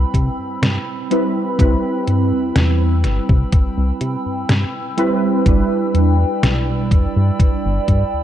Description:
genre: vaporwave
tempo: 62 BPM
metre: 4/4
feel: straight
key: unclear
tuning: A4 = 442 Hz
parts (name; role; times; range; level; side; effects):
- warbly lo-fi synth keys; accompaniment; 0.0-8.2 s; G3 to B4; -20 LUFS; right 1 dB; ensemble chorus, analog delay
- warbly tape-like pad; sustained chords; 0.0-8.2 s; C4 to E6; -26 LUFS; right 2 dB; chorus, built-in reverb, phaser
- chorused synth bass; bass; 0.0-8.2 s; E1 to C3; -17 LUFS; equal; tube saturation
- detuned 8-bit digital drum machine; drums; 0.1-8.1 s; hi-hat, snare drum; -21 LUFS; equal; none
- electronic kick drum; drums; 0.1-8.1 s; none; -15 LUFS; equal; none
room: light reverb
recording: dark, warm production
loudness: -15 LUFS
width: side -11 dB against mid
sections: 0.0-8.2 A section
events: none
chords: 0.0 Cmaj7; 5.5 G6

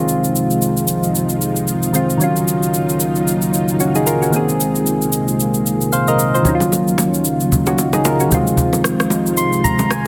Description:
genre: amapiano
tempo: 113 BPM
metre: 4/4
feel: swing 58% on 16ths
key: Eb dorian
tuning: A4 = 441 Hz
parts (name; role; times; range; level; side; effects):
- soft electric-piano-like synth keys; accompaniment; 0.0-10.1 s; Eb3 to C6; -19 LUFS; equal; chorus
- string machine, cellos; sustained chords; 0.0-10.1 s; C3 to F4; -22 LUFS; equal; ensemble chorus
- electronic shaker and rim click; drums; 0.1-10.1 s; none; -24 LUFS; equal; soft clipping on snare
- congas and bongos; percussion; 6.4-10.1 s; none; -22 LUFS; equal; none
room: light reverb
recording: dense, heavily limited modern master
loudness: -16 LUFS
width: mono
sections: 0.0-10.1 A section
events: synth keys fill 9.1-10.1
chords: 0.0 Fm7; 2.2 Ebm9; 4.3 Bb9sus4; 6.5 Ebm9; 8.3 Fm7

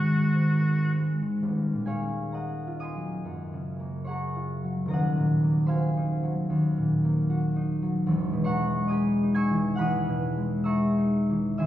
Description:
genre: classical, impressionist duo for oboe and harp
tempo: 61-79 BPM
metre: 4/4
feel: rubato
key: Eb dorian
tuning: A4 = 436 Hz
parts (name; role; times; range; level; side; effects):
- clear oboe; melody; 0.0-0.9 s; Gb4; -33 LUFS; left 1 dB; none
- concert harp; accompaniment; 0.0-11.7 s; Eb1 to G#6; -24 LUFS; equal; none
room: wet recital hall reverb, RT60 1.6 s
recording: heard from further back in the room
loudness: -24 LUFS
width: side -12 dB against mid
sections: 0.0-1.4 A section; 1.4-11.7 B section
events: none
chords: 0.0 Abadd9; 1.4 Ebm9; 3.2 Gbmaj9; 4.9 Ebm6; 8.1 Emaj7

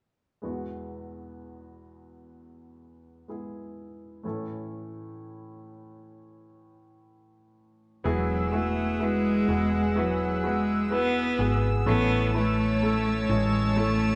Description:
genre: pop ballad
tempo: 63 BPM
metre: 4/4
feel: straight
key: E major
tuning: A4 = 440 Hz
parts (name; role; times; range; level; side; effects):
- clear baby grand piano; accompaniment; 0.4-14.2 s; E2 to C#5; -34 LUFS; equal; none
- clear cello; melody; 8.1-14.2 s; F#3 to B3; -29 LUFS; equal; none
- chorused pulse-width pad; sustained chords; 8.1-14.2 s; G#4 to E6; -34 LUFS; equal; none
- hollow-body short-scale fingered electric bass; bass; 8.1-14.2 s; E1 to A1; -31 LUFS; equal; none
room: wet large studio reverb, RT60 1.1 s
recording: band playing live in one room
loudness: -26 LUFS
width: mono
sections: 0.4-8.1 A section; 8.1-14.2 B section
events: none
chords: 0.4 Eadd9; 4.2 A; 8.1 Eadd9; 11.9 A

